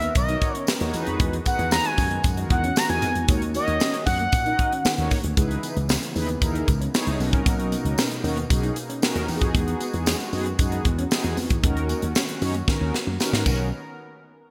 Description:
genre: early-eighties boogie funk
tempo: 115 BPM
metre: 4/4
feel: straight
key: unclear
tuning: A4 = 440 Hz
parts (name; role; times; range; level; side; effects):
- expressive synth lead; melody; 0.0-5.1 s; D#5 to A#5; -28 LUFS; equal; chorus
- warm analog pad; sustained chords; 0.0-13.7 s; B2 to A#4; -38 LUFS; equal; chorus
- mellow electric guitar; riff; 0.0-13.6 s; G#3 to D#4; -38 LUFS; equal; none
- slap bass with an envelope filter; bass; 0.0-13.7 s; B1 to D#3; -29 LUFS; equal; none
- tight funk drum kit; drums; 0.0-13.6 s; crash cymbal, hi-hat, kick drum, snare drum; -26 LUFS; equal; gated reverb
- tambourine; percussion; 0.2-13.7 s; none; -39 LUFS; equal; none
- mellow synth brass; accompaniment; 0.3-13.7 s; B3 to D#5; -33 LUFS; equal; chorus
room: light reverb, small room reverb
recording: bright 1980s-style digital production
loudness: -23 LUFS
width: mono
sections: 0.0-5.4 A section; 5.4-13.7 B section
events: drum fill 12.7-13.7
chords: 0.0 Bmaj7; 0.9 Emaj9; 3.3 D#m7; 5.4 C#m7; 7.2 Bmaj7; 9.3 Emaj9; 11.6 D#m7; 13.5 Bmaj7; 13.7 N.C.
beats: 0.15 0.68 | 1.20 1.72 2.24 2.76 | 3.29 3.81 4.33 4.85 | 5.37 5.89 6.42 6.94 | 7.46 7.98 8.50 9.02 | 9.55 10.07 10.59 11.11 | 11.63 12.15 12.68 13.20

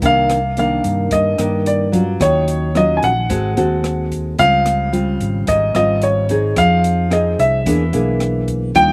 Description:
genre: bossa nova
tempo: 110 BPM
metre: 4/4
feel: straight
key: C minor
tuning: A4 = 441 Hz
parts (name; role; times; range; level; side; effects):
- nylon-string guitar; accompaniment; 0.0-8.9 s; G2 to A4; -21 LUFS; equal; none
- fingered electric bass; bass; 0.0-8.9 s; Ab1 to G2; -22 LUFS; equal; none
- open jazz drum kit; drums; 0.0-8.9 s; hi-hat, kick drum, rim click; -29 LUFS; equal; none
- warm baby grand piano; melody; 0.1-8.9 s; Db5 to Ab5; -19 LUFS; equal; slapback echo
room: little or no reverb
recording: recorded outdoors, with no room sound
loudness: -16 LUFS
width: mono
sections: 0.0-8.9 A section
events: none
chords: 0.0 Cm9; 2.2 Ebm9; 3.3 Ab7b9; 4.4 Dbmaj9#11; 6.6 Fm7; 7.7 E7#11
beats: | 0.01 0.56 1.11 1.65 | 2.20 2.75 3.29 3.84 | 4.39 4.93 5.48 6.03 | 6.57 7.12 7.67 8.21 | 8.76

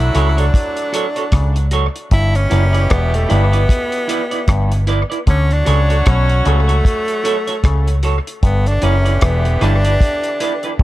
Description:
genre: roots reggae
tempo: 76 BPM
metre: 4/4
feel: swing 59% on 16ths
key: D major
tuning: A4 = 440 Hz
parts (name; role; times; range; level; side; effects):
- bright tenor saxophone; melody; 0.0-10.8 s; A3 to E4; -21 LUFS; equal; tape echo
- clear horn section; second line; 0.0-10.8 s; A2 to C#5; -26 LUFS; right 1 dB; tape echo
- vintage muted fingered electric bass; bass; 0.0-10.8 s; E1 to D2; -14 LUFS; equal; none
- semi-hollow electric guitar; accompaniment; 0.1-10.7 s; E4 to D5; -23 LUFS; right 5 dB; tape echo
- auto-wah clav; riff; 0.1-10.8 s; E2 to D3; -25 LUFS; left 4 dB; overdrive
- cloth-damped thuddy drum kit; drums; 0.1-10.8 s; hi-hat, kick drum, rim click, toms; -17 LUFS; equal; dub echo
room: little or no reverb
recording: dark, warm production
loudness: -13 LUFS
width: side -16 dB against mid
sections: 0.0-10.8 A section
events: none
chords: 0.0 Dmaj7; 2.1 G6; 5.3 Dmaj7; 8.4 G6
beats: 0.54 1.33 | 2.12 2.91 3.70 4.49 | 5.27 6.06 6.85 7.64 | 8.43 9.22 10.01 10.80

